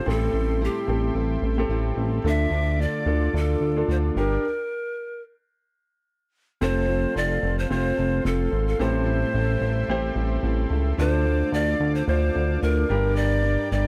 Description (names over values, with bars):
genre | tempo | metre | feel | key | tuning
pop | 110 BPM | 4/4 | swing 56% on 16ths | F major | A4 = 444 Hz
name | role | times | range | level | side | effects
breathy bright large pan pipes | melody | 0.0-13.9 s | G4 to E5 | -30 LUFS | equal | slapback echo
warm grand piano | accompaniment | 0.0-13.9 s | G2 to C5 | -30 LUFS | equal | none
warm analog pad | sustained chords | 0.0-13.9 s | F4 to D6 | -40 LUFS | equal | chorus, tremolo
fingerpicked plugged-in steel-string acoustic guitar | riff | 0.0-13.9 s | A2 to Bb4 | -34 LUFS | equal | none
chorused synth bass | bass | 0.1-13.9 s | F1 to D2 | -26 LUFS | equal | none
room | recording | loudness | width
light reverb | dry, close 1970s-style studio recording | -24 LUFS | mono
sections
0.0-6.6 A section; 6.6-13.9 B section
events
stop 4.4-6.6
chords
0.1 Am7; 2.2 Dm; 4.2 Gm; 5.5 N.C.; 6.6 F; 8.8 Am7; 11.0 Dm; 12.9 Gm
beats
| 0.07 0.61 1.16 1.70 | 2.25 2.79 3.34 3.89 | 4.43 4.98 5.52 6.07 | 6.62 7.16 7.71 8.25 | 8.80 9.35 9.89 10.44 | 10.99 11.53 12.08 12.63 | 13.17 13.72